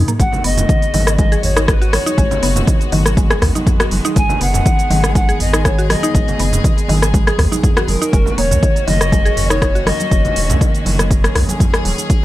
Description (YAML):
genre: afro house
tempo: 121 BPM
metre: 4/4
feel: swing 54% on 16ths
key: G# minor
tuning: A4 = 440 Hz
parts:
  - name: mallet-like synth pluck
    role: arpeggios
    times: 0.0-9.9 s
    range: D#3 to G#4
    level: -22 LUFS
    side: equal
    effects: chorus, sidechain pumping, tape echo
  - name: round analog bass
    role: bass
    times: 0.0-11.9 s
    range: D#1 to D#2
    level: -18 LUFS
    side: equal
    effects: sidechain pumping
  - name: deep house drum kit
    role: drums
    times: 0.1-12.2 s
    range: hi-hat, rim click, shaker, toms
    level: -19 LUFS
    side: equal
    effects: none
  - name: polished pan flute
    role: melody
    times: 0.2-10.9 s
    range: A#4 to G#5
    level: -21 LUFS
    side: left 2 dB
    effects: tape echo
  - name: rich studio string section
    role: sustained chords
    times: 0.2-12.2 s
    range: D#3 to G#4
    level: -25 LUFS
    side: left 1 dB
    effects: sidechain pumping
  - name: electronic kick drum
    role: drums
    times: 0.2-12.2 s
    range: none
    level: -15 LUFS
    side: equal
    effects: none
  - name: congas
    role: percussion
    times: 0.3-12.0 s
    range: none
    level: -24 LUFS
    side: right 2 dB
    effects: none
room: little or no reverb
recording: none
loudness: -12 LUFS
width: side -15 dB against mid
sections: 0.0-12.2 A section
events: drum fill 0.0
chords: 0.2 G#m7; 8.1 F#6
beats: | 0.20 0.69 1.19 1.68 | 2.18 2.68 3.17 3.67 | 4.16 4.66 5.16 5.65 | 6.15 6.64 7.14 7.63 | 8.13 8.63 9.12 9.62 | 10.11 10.61 11.11 11.60 | 12.10